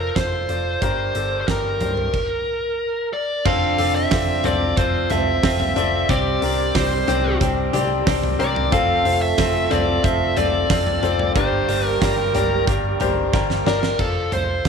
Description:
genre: piano-driven pop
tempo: 91 BPM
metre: 4/4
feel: straight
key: F major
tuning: A4 = 440 Hz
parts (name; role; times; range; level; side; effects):
- dark smooth lead guitar; melody; 0.0-14.7 s; A4 to F5; -22 LUFS; right 1 dB; overdrive
- bright upright piano; accompaniment; 0.0-14.7 s; G2 to D5; -23 LUFS; left 12 dB; none
- hollow-body short-scale picked electric bass; bass; 0.0-14.7 s; F1 to G2; -26 LUFS; equal; none
- huge arena drum kit; drums; 0.2-14.7 s; crash cymbal, hi-hat, kick drum, snare drum, toms; -24 LUFS; right 3 dB; none
- mellow French horn section; second line; 3.5-13.6 s; C3 to A4; -28 LUFS; right 9 dB; none
- direct-recorded clean electric guitar; riff; 3.5-14.0 s; G2 to Bb4; -28 LUFS; right 12 dB; lush chorus
room: moderate echo chamber reverb, RT60 1.9 s, small room ambience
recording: 1960s-style stereo with parts hard left and right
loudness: -17 LUFS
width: side -6 dB against mid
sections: 0.0-3.5 A section; 3.5-14.0 B section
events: drum fill 13.3-14.0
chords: 0.0 F; 0.8 Gm; 3.5 F; 6.1 Csus2; 8.7 F; 11.4 Gm; 14.0 F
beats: 0.16 | 0.82 1.48 2.14 2.80 | 3.46 4.12 4.77 5.43 | 6.09 6.75 7.41 8.06 | 8.72 9.38 10.04 10.70 | 11.36 12.01 12.67 13.33 | 13.99 14.65

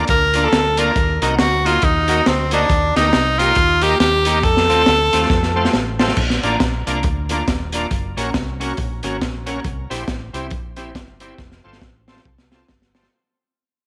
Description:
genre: ska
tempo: 138 BPM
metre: 4/4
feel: swing 60% on 8ths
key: Bb major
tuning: A4 = 441 Hz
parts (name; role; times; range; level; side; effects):
- semi-hollow electric guitar; accompaniment; 0.0-13.1 s; A3 to C5; -28 LUFS; equal; analog chorus
- bright tonewheel organ; stabs; 0.0-13.1 s; C4 to Eb5; -29 LUFS; equal; overdrive, chorus vibrato
- fingered electric bass; bass; 0.0-13.1 s; Eb1 to F2; -26 LUFS; equal; none
- edgy tenor saxophone; melody; 0.1-5.7 s; C4 to Bb4; -19 LUFS; equal; none
- crunchy breakbeat drum kit; drums; 0.1-13.1 s; crash cymbal, hi-hat, kick drum, snare drum; -23 LUFS; equal; none
room: moderate echo chamber reverb, RT60 1.6 s, small room ambience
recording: none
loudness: -17 LUFS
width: mono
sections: 0.0-6.2 A section; 6.2-13.1 B section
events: drum fill 5.3-6.2, 11.4-13.1; fade-out 6.2-13.1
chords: 0.0 Bb; 1.0 Ebm; 2.7 Eb; 4.4 F; 6.2 Bb; 7.9 Gb; 9.6 C; 11.4 F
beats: 0.09 0.52 | 0.96 1.39 1.83 2.26 | 2.69 3.13 3.56 4.00 | 4.43 4.87 5.30 5.74 | 6.17 6.61 7.04 7.48 | 7.91 8.35 8.78 9.21 | 9.65 10.08 10.52 10.95 | 11.39 11.82 12.26 12.69

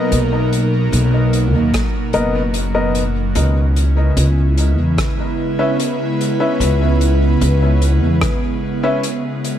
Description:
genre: ambient dub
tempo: 74 BPM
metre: 4/4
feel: straight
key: C# dorian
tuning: A4 = 439 Hz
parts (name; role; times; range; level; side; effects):
- airy breathy pad; sustained chords; 0.0-9.6 s; B2 to B4; -19 LUFS; right 1 dB; chorus
- clear upright piano; stabs; 0.0-9.0 s; B3 to E5; -22 LUFS; left 2 dB; dub echo
- upright bass; bass; 0.1-8.2 s; F#1 to E2; -15 LUFS; equal; none
- loose indie drum kit; drums; 0.1-9.6 s; hi-hat, rim click; -27 LUFS; left 2 dB; dub echo
- electronic kick drum; drums; 1.7-8.4 s; none; -22 LUFS; equal; none
room: light reverb, small room reverb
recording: none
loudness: -14 LUFS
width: side -10 dB against mid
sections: 0.0-9.6 A section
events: none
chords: 0.0 Bmaj7; 3.4 C#m7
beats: | 0.12 0.93 1.74 2.55 | 3.36 4.17 4.98 5.79 | 6.60 7.41 8.22 9.04

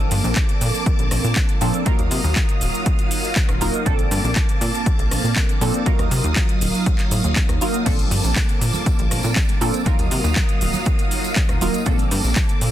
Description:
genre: filtered disco house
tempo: 120 BPM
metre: 4/4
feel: straight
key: Bb major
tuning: A4 = 439 Hz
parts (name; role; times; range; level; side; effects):
- funky polysynth comp; accompaniment; 0.0-12.7 s; F3 to Bb4; -25 LUFS; right 1 dB; chorus, phaser, vintage 12-bit sampler grit, sidechain pumping
- string machine, full ensemble; sustained chords; 0.0-12.7 s; Gb3 to Eb6; -27 LUFS; right 1 dB; phaser, ensemble chorus, sidechain pumping
- plucky analog bass; bass; 0.0-12.7 s; Eb1 to C3; -22 LUFS; equal; tube saturation, sidechain pumping
- house drum kit; drums; 0.1-12.7 s; crash cymbal, handclaps, hi-hat, rim click, shaker; -25 LUFS; equal; overdrive, sidechain pumping on hats, sidechain pumping on perc, sidechain pumping on cymbals
- electronic kick drum; drums; 0.4-12.5 s; none; -20 LUFS; equal; overdrive
- congas and tambourine; percussion; 7.9-12.6 s; none; -32 LUFS; right 4 dB; sidechain pumping on perc
room: little or no reverb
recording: dense, heavily limited modern master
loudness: -17 LUFS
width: side -12 dB against mid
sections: 0.0-12.7 A section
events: none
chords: 0.0 Bbmaj7; 1.9 Ebmadd9; 3.9 Bbmaj7; 5.9 Ebmadd9; 7.9 Bbmaj7; 9.9 Ebmadd9; 11.9 Bbmaj7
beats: 0.36 0.86 1.36 | 1.86 2.36 2.86 3.36 | 3.86 4.36 4.86 5.36 | 5.86 6.36 6.86 7.36 | 7.86 8.36 8.86 9.36 | 9.86 10.36 10.86 11.36 | 11.86 12.36

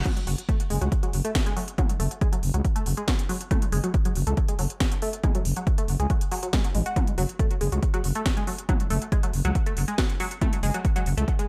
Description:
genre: driving peak-time techno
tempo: 139 BPM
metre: 4/4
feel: straight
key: F# minor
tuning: A4 = 439 Hz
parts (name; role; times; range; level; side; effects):
- growling FM bass; bass; 0.0-11.2 s; F#1 to C#2; -27 LUFS; equal; sidechain pumping
- tight sequenced synth; riff; 0.1-11.5 s; F#3 to F#4; -33 LUFS; equal; chorus, phaser, sidechain pumping, delay
- electronic kick drum; drums; 0.1-11.4 s; none; -27 LUFS; equal; none
- techno drum kit; drums; 0.1-11.5 s; crash cymbal, hi-hat, snare drum, toms; -35 LUFS; equal; none
room: light reverb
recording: none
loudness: -25 LUFS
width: mono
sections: 0.1-11.5 A section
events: drop 0.1-11.5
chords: 0.1 F#m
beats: | 0.06 0.49 0.92 1.35 | 1.78 2.21 2.65 3.08 | 3.51 3.94 4.37 4.80 | 5.24 5.67 6.10 6.53 | 6.96 7.39 7.83 8.26 | 8.69 9.12 9.55 9.98 | 10.41 10.85 11.28

